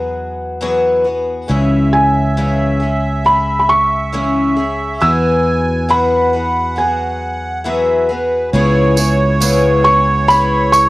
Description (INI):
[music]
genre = acoustic folk duo or small band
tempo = 68 BPM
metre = 4/4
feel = straight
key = C# minor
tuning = A4 = 440 Hz
[part]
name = felt-muted upright piano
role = melody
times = 0.0-10.9 s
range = F#5 to E6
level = -15 LUFS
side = right 1 dB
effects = cassette tape
[part]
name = picked twelve-string acoustic guitar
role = accompaniment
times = 0.0-10.9 s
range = C#3 to G#4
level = -17 LUFS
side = left 2 dB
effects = cassette tape
[part]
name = fingered electric bass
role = bass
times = 0.0-10.9 s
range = C#2 to E2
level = -18 LUFS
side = equal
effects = none
[part]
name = accordion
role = second line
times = 1.5-10.9 s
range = B4 to G#5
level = -20 LUFS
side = right 2 dB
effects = light tremolo tuning, cassette tape
[part]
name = tambourine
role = percussion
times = 9.0-10.9 s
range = none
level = -22 LUFS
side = right 5 dB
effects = none
[sound]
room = moderate booth ambience, RT60 0.2 s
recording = home recording on cassette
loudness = -12 LUFS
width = side -19 dB against mid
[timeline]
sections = 0.0-8.5 A section; 8.5-10.9 B section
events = none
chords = 0.0 Eadd9; 1.5 C#m; 5.0 Eadd9; 8.5 C#m7